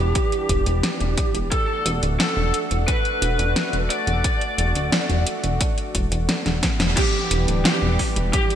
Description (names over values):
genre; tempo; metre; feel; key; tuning
synthwave; 88 BPM; 4/4; straight; E minor; A4 = 440 Hz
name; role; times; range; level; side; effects
lead guitar through a small cranked amp; melody; 0.0-8.6 s; G4 to D5; -25 LUFS; right 1 dB; overdrive, wide subtle chorus, ping-pong delay
lush unison pad; sustained chords; 0.0-8.6 s; E3 to G4; -28 LUFS; equal; chorus, sidechain pumping
chorused synth bass; bass; 0.0-8.3 s; D1 to E1; -22 LUFS; equal; none
electronic kick drum; drums; 0.2-8.5 s; none; -23 LUFS; equal; none
pop drum kit; drums; 0.2-8.6 s; crash cymbal, hi-hat, snare drum; -24 LUFS; equal; gated reverb
room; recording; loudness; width
moderate lush hall reverb, RT60 2.8 s; bright 1980s-style digital production; -19 LUFS; side -10 dB against mid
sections
0.0-7.0 A section; 7.0-8.6 B section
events
drum fill 6.5-7.0; band accent 6.8-7.1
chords
0.0 Em7; 1.5 D; 7.0 Em7